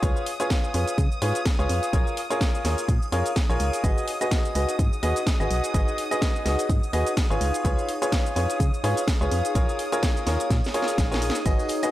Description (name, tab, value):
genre	piano house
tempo	126 BPM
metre	4/4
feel	swing 56% on 16ths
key	unclear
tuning	A4 = 441 Hz
part	string machine, violins	sustained chords	0.0-11.9 s	D#6	-35 LUFS	equal	ensemble chorus, sidechain pumping
part	clear grand piano	riff	0.0-11.9 s	E#4 to D#5	-26 LUFS	equal	sidechain pumping, tape echo
part	organ-like FM bass	bass	0.0-11.6 s	G#1 to C#3	-26 LUFS	equal	sidechain pumping
part	electronic kick drum	drums	0.0-11.6 s	none	-24 LUFS	equal	studio ambience
part	house drum kit	drums	0.0-11.9 s	hi-hat, shaker, snare drum	-31 LUFS	equal	studio ambience
part	ethereal airy pad	texture	2.1-11.9 s	D#4 to F#5	-35 LUFS	left 1 dB	ensemble chorus, built-in reverb, sidechain pumping
part	tambourine	percussion	11.5-11.9 s	none	-42 LUFS	left 2 dB	none
room	digital ambience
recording	dry, gritty hardware recording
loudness	-22 LUFS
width	side -14 dB against mid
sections	0.0-11.9 A section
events	drum fill 10.5-11.5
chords	0.0 C#7; 1.9 A#m7; 3.8 G#m7; 7.4 C#7; 9.6 A#m7